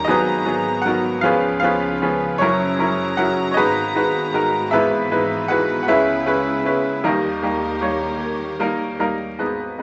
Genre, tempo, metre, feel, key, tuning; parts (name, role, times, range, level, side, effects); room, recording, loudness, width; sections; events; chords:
folk; 52 BPM (dotted quarters); 6/8; straight; A4 = 440 Hz
bright upright piano; melody; 0.0-9.8 s; F#1 to F#5; -20 LUFS; equal
warm chamber string section; sustained chords; 0.0-9.4 s; C#2 to A#5; -29 LUFS; equal
wet large studio reverb, RT60 0.9 s; vinyl crackle, nothing above 7.9 kHz; -20 LUFS; mono
0.0-9.4 A section
0.1 G#m7; 1.2 C#7; 2.4 F#7; 3.6 G#m7; 4.7 Emaj7/G#; 5.9 C#m7; 7.0 D#